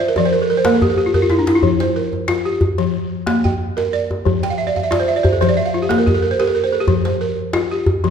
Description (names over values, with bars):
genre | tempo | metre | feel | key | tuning
west african traditional, West African string and xylophone music | 91 BPM | 4/4 | swing 53% on 16ths | F major | A4 = 440 Hz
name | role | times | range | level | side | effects
balafon | arpeggios | 0.0-8.1 s | F3 to G5 | -16 LUFS | equal | none
djembe | percussion | 0.2-8.1 s | none | -20 LUFS | equal | none
room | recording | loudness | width
wet recital hall reverb, RT60 1.6 s | dark, warm production | -15 LUFS | side -7 dB against mid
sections
0.0-1.6 A section; 1.6-8.1 B section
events
balafon fill 0.0-1.6, 4.4-6.9; drum fill 1.0-1.6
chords
0.0 N.C.; 1.6 F5; 2.9 Bb; 4.3 Fmaj7(no3); 5.6 N.C.; 6.9 F5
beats
0.32 0.98 | 1.63 2.29 2.94 3.60 | 4.26 4.91 5.57 6.23 | 6.89 7.54